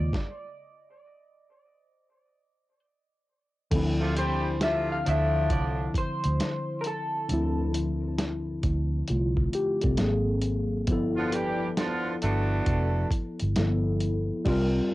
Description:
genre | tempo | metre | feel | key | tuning
R&B, neo-soul | 67 BPM | 4/4 | swing 64% on 16ths | D minor | A4 = 440 Hz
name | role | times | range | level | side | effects
electric guitar through a small old amp | melody | 0.0-7.7 s | A4 to F5 | -31 LUFS | left 1 dB | wide subtle chorus, cassette tape, plate reverb
tine electric piano | accompaniment | 0.0-14.9 s | Db3 to Bb4 | -29 LUFS | left 1 dB | phaser, cassette tape, plate reverb
vintage muted fingered electric bass | bass | 0.0-14.8 s | F1 to Eb2 | -28 LUFS | equal | none
dusty soul sampler-style drum kit | drums | 0.1-14.8 s | crash cymbal, hi-hat, kick drum, snare drum | -30 LUFS | equal | cassette tape
clear horn section | stabs | 4.0-13.1 s | A2 to G4 | -30 LUFS | right 2 dB | cassette tape, plate reverb
room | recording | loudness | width
moderate small room reverb, RT60 0.5 s | home recording on cassette | -24 LUFS | side -18 dB against mid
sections
0.0-3.7 A section; 3.7-14.9 B section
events
stop 0.1-3.7; band accent 14.5-14.9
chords
0.1 N.C.; 3.7 Dm9; 10.0 G#9; 10.9 G13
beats
| 0.13 1.03 1.92 2.82 | 3.71 4.61 5.51 6.40 | 7.30 8.19 9.09 9.98 | 10.88 11.77 12.67 13.56 | 14.46

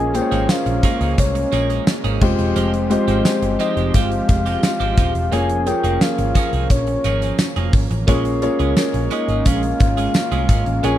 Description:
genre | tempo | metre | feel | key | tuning
1980s-style pop | 87 BPM | 4/4 | straight | unclear | A4 = 440 Hz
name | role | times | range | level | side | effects
soft octave-layered synth lead | melody | 0.0-11.0 s | Db5 to Ab5 | -24 LUFS | left 3 dB | chorus, tape echo
dark baby grand piano | accompaniment | 0.0-11.0 s | Ab3 to Eb5 | -22 LUFS | left 2 dB | none
warm analog pad | sustained chords | 0.0-11.0 s | F3 to G4 | -27 LUFS | right 4 dB | chorus
vintage muted picked electric bass | bass | 0.0-11.0 s | Eb1 to Db2 | -22 LUFS | equal | none
clean electric guitar | riff | 0.1-11.0 s | F3 to Ab4 | -28 LUFS | right 9 dB | wide subtle chorus, tape echo
gated 80s drum kit | drums | 0.1-11.0 s | crash cymbal, hi-hat, kick drum, snare drum, tambourine | -19 LUFS | equal | none
tambourine | percussion | 0.1-11.0 s | none | -38 LUFS | left 19 dB | none
room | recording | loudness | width
little or no reverb | none | -16 LUFS | side -12 dB against mid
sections
0.0-11.0 A section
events
none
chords
0.0 Bbm7; 2.2 Fmadd9; 5.3 Db6/F; 8.1 Bbm7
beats
0.49 1.18 1.87 | 2.56 3.25 3.94 4.63 | 5.32 6.01 6.70 7.39 | 8.08 8.77 9.46 10.15 | 10.84

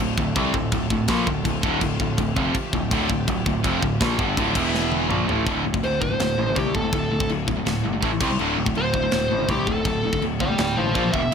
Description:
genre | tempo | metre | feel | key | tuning
heavy metal | 164 BPM | 4/4 | straight | D minor | A4 = 440 Hz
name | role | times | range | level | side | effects
chorused pulse-width pad | sustained chords | 0.0-5.5, 11.3 s | B2 to E5 | -34 LUFS | right 2 dB | none
distorted electric guitar | riff | 0.0-11.3 s | D2 to C4 | -26 LUFS | left 11 dB | distortion
distorted electric guitar | riff | 0.0-11.3 s | D2 to C4 | -27 LUFS | right 12 dB | distortion
overdriven picked electric bass | bass | 0.0-11.3 s | D1 to C2 | -27 LUFS | equal | none
tight metal drum kit | drums | 0.0-11.3 s | china cymbal, crash cymbal, kick drum, snare drum, toms | -26 LUFS | equal | none
dark smooth lead guitar | melody | 5.8-11.3 s | G4 to G5 | -25 LUFS | equal | overdrive, ping-pong delay
room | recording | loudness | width
light reverb, small room ambience | none | -20 LUFS | side -7 dB against mid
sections
0.0-5.5 A section; 5.5-11.3 B section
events
half time 0.0-5.5; drum fill 4.7-5.5; lead electric guitar solo 5.5-11.3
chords
0.0 Dm; 4.6 E5; 5.1 Dm; 5.5 D5; 8.0 A5; 8.2 C5; 8.4 D5; 11.0 Bb5; 11.1 E5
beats
0.00 0.36 0.72 | 1.09 1.45 1.82 2.18 | 2.55 2.91 3.28 3.64 | 4.01 4.37 4.74 5.10 | 5.47 5.83 6.20 6.57 | 6.93 7.30 7.66 8.03 | 8.39 8.76 9.13 9.49 | 9.86 10.22 10.59 10.95 | 11.32

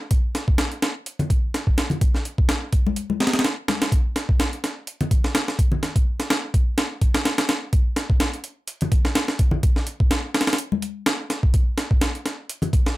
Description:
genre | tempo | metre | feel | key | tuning
breakbeat | 126 BPM | 4/4 | swing 55% on 16ths | none | none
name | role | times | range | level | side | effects
breakbeat sampler-style drum kit | drums | 0.1-13.0 s | hi-hat, kick drum, snare drum | -19 LUFS | equal | small room ambience
congas | percussion | 1.2-5.8, 8.8-12.7 s | none | -26 LUFS | left 3 dB | none
room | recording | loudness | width
light reverb | none | -20 LUFS | side -18 dB against mid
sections
0.0-13.0 A section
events
kick drops out 3.0-3.9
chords
none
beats
| 0.11 0.59 1.06 1.54 | 2.02 2.49 2.97 3.44 | 3.92 4.40 4.87 5.35 | 5.83 6.30 6.78 7.25 | 7.73 8.21 8.68 9.16 | 9.64 10.11 10.59 11.06 | 11.54 12.02 12.49

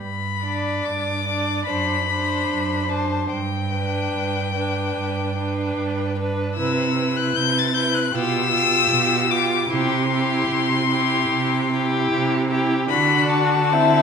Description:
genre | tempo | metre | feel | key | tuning
classical, slow romantic movement for string quartet | 74 BPM | 4/4 | rubato | G major | A4 = 441 Hz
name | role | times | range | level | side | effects
rich violin | melody | 0.0-14.0 s | G5 to A6 | -22 LUFS | left 8 dB | none
rich cello | bass | 0.0-14.0 s | F#2 to D3 | -24 LUFS | right 4 dB | none
dark violin | second line | 0.4-14.0 s | E4 to D5 | -26 LUFS | left 2 dB | none
warm viola | accompaniment | 0.4-14.0 s | C4 to F4 | -26 LUFS | right 2 dB | none
room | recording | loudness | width
wet recital hall reverb, RT60 1.5 s | minimal, uncompressed stereo recording | -19 LUFS | side -6 dB against mid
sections
0.0-14.0 A section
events
none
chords
0.0 G; 1.7 D7/F#; 3.3 G; 6.6 Cmaj7; 8.1 G7/B; 9.7 C; 12.9 D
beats
| 0.01 0.86 1.68 2.50 | 3.31 4.13 4.96 5.77 | 6.57 7.37 8.15 8.91 | 9.71 10.50 11.31 12.12 | 12.92 13.72

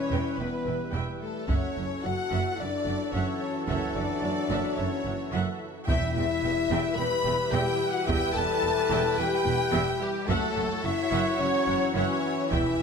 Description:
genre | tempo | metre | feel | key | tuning
cinematic, epic orchestral film score | 109 BPM | 4/4 | straight | unclear | A4 = 440 Hz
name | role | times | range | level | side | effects
warm symphonic violin section | melody | 0.0-12.8 s | G4 to B5 | -35 LUFS | left 3 dB | none
rich studio violin section | second line | 0.0-12.8 s | G4 to B5 | -38 LUFS | left 3 dB | none
silver concert flute | second line | 0.0-12.8 s | G4 to B5 | -36 LUFS | equal | none
dark trombone section | sustained chords | 0.0-12.8 s | E3 to G3 | -36 LUFS | right 3 dB | none
mellow French horn section | sustained chords | 0.0-12.8 s | G3 to B4 | -30 LUFS | left 6 dB | none
warm symphonic string section | sustained chords | 0.0-12.8 s | E4 to F#5 | -38 LUFS | equal | none
clear trumpet section | stabs | 0.0-12.8 s | A4 to C#5 | -36 LUFS | right 4 dB | none
rich symphonic viola section | accompaniment | 0.1-12.8 s | E5 to G5 | -37 LUFS | right 2 dB | none
rich symphonic cello section | bass | 0.1-12.6 s | E2 to F#2 | -34 LUFS | right 4 dB | none
rich symphonic double bass section | bass | 0.1-12.6 s | E1 to F#1 | -34 LUFS | right 5 dB | none
taiko ensemble | drums | 1.5-12.8 s | none | -31 LUFS | right 1 dB | none
timpani | percussion | 5.9-6.7, 12.5-12.8 s | E2 | -36 LUFS | left 1 dB | none
room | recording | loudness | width
moderate scoring stage reverb, RT60 1.9 s | none | -25 LUFS | side -6 dB against mid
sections
0.0-12.8 A section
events
timpani fill 12.5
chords
0.0 Em; 1.5 F#m7; 5.9 Em; 10.3 F#m7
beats
0.40 0.95 | 1.50 2.05 2.60 3.14 | 3.69 4.23 4.78 5.33 | 5.88 6.43 6.98 7.53 | 8.09 8.64 9.19 9.74 | 10.30 10.85 11.40 11.96 | 12.53

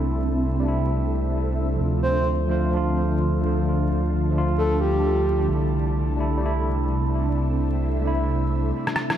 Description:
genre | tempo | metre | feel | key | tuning
future garage | 130 BPM | 4/4 | swing 63% on 16ths | unclear | A4 = 439 Hz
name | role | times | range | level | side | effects
tine electric piano | accompaniment | 0.0-9.2 s | F3 to F4 | -26 LUFS | right 1 dB | medium stereo tremolo, analog delay
ethereal airy pad | sustained chords | 0.0-9.2 s | C3 to A5 | -26 LUFS | equal | ensemble chorus, built-in reverb, phaser
soft dub sub bass | bass | 0.0-8.7 s | C2 to D2 | -24 LUFS | equal | none
breathy flute-like synth lead | melody | 2.0-5.5 s | G4 to C5 | -27 LUFS | right 1 dB | chorus, tape echo
electronic rim click | drums | 8.9-9.2 s | none | -22 LUFS | equal | studio reverb
room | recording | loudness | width
moderate echo chamber reverb, RT60 1.7 s | echo-heavy mix, vinyl crackle | -20 LUFS | side -10 dB against mid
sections
0.0-9.2 A section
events
filter sweep on ambient pad 0.0-9.2; drum fill 8.8-9.2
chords
0.0 C6; 1.8 Dm; 5.5 C6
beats
0.42 0.88 1.34 | 1.80 2.26 2.72 3.19 | 3.65 4.11 4.57 5.03 | 5.49 5.95 6.42 6.88 | 7.34 7.80 8.26 8.72

